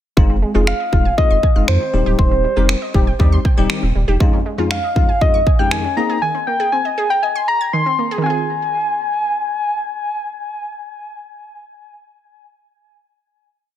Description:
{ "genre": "dance-pop", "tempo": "119 BPM", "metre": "4/4", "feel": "straight", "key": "F minor", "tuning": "A4 = 443 Hz", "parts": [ { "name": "bell-like tine electric piano", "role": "accompaniment", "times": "0.2-6.2 s", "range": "F2 to Bb4", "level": "-22 LUFS", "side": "left 4 dB", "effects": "ensemble chorus, sidechain pumping" }, { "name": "wide unison pluck", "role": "arpeggios", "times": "0.2-12.0 s", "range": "Eb3 to Ab6", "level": "-25 LUFS", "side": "right 4 dB", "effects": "sidechain pumping, ping-pong delay" }, { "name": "saturated sub bass", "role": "bass", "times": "0.2-4.2 s", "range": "D1 to F2", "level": "-17 LUFS", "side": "equal", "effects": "sidechain pumping" }, { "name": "pop drum kit", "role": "drums", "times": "0.2-5.8 s", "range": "finger snaps, kick drum", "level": "-16 LUFS", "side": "equal", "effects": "soft clipping on snare" }, { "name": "soft struck synth lead", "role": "melody", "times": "0.7-11.9 s", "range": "C5 to C6", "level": "-19 LUFS", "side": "left 1 dB", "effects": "chorus, ping-pong delay" } ], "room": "light reverb, digital ambience", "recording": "dense, heavily limited modern master", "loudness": "-14 LUFS", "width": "side -11 dB against mid", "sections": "0.2-8.2 verse; 8.2-12.3 final chord", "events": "none", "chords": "0.2 Fm7; 1.9 Cm; 4.2 Dbadd9/F; 6.0 Abadd9; 8.2 Fm7" }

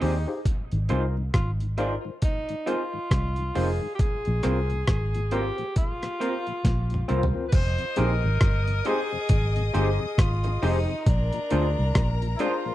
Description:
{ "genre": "lovers rock reggae", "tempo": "68 BPM", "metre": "4/4", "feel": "swing 59% on 16ths", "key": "F dorian", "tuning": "A4 = 440 Hz", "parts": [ { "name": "clear tenor saxophone", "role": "melody", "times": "0.0-12.7 s", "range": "D4 to C5", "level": "-31 LUFS", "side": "equal", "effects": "tape echo" }, { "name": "barky tine electric piano", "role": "accompaniment", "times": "0.0-12.7 s", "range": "C4 to C5", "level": "-31 LUFS", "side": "left 3 dB", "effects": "overdrive, fast tremolo, slapback echo" }, { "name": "mellow tonewheel organ", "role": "accompaniment", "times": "0.0-12.7 s", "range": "F2 to F4", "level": "-36 LUFS", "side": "left 6 dB", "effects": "slow rotary speaker" }, { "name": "electric guitar through a small old amp", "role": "stabs", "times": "0.0-12.5 s", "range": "Ab3 to C5", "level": "-30 LUFS", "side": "right 6 dB", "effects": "lush chorus" }, { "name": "vintage muted fingered electric bass", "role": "bass", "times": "0.0-12.3 s", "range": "F1 to Eb2", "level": "-25 LUFS", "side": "equal", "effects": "none" }, { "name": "breakbeat sampler-style drum kit", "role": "drums", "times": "0.0-12.6 s", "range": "crash cymbal, hi-hat, kick drum, rim click, snare drum, toms", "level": "-24 LUFS", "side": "equal", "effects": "overdrive" }, { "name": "warm studio string section", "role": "second line", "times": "7.5-12.7 s", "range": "Bb4 to Eb6", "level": "-36 LUFS", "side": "left 5 dB", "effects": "none" } ], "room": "little or no reverb", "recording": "dry, close 1970s-style studio recording", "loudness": "-23 LUFS", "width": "side -14 dB against mid", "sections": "0.0-7.5 A section; 7.5-12.7 B section", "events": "drum fill 6.6-7.5", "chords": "0.5 Ab6; 4.0 Bbsus2; 7.5 Fm7; 11.1 Bb9" }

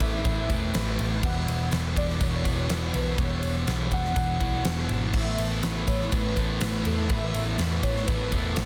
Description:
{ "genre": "rock, shoegaze and dream pop", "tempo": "123 BPM", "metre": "4/4", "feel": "straight", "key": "unclear", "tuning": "A4 = 440 Hz", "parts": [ { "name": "warm velvety synth lead", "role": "melody", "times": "0.0-8.6 s", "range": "A4 to F#5", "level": "-37 LUFS", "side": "equal", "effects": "chorus, tape echo" }, { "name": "soft additive organ-like pad", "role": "sustained chords", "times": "0.0-8.7 s", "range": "B4 to E6", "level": "-45 LUFS", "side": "equal", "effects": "none" }, { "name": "twelve-string electric guitar", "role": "arpeggios", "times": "0.0-8.7 s", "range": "E3 to A4", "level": "-43 LUFS", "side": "equal", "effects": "none" }, { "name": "thick fuzz guitar", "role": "riff", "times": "0.0-8.7 s", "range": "E2 to A3", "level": "-32 LUFS", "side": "equal", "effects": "distortion, lush chorus" }, { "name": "vintage muted picked electric bass", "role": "bass", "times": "0.0-8.7 s", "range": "E1 to E2", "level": "-32 LUFS", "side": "equal", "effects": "none" }, { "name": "huge arena drum kit", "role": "drums", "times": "0.0-8.7 s", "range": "crash cymbal, kick drum, ride cymbal, snare drum", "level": "-31 LUFS", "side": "equal", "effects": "none" }, { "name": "tambourine", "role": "percussion", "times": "0.0-8.7 s", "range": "none", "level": "-49 LUFS", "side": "equal", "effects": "none" }, { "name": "overdriven semi-hollow guitar", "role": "riff", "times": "5.1-8.7 s", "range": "A3 to B4", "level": "-38 LUFS", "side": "equal", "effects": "reverse reverb" } ], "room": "small room ambience", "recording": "dense, heavily limited modern master", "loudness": "-26 LUFS", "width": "mono", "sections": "0.0-8.7 A section", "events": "none", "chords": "0.0 Asus2; 1.2 Emadd9; 5.1 Asus2" }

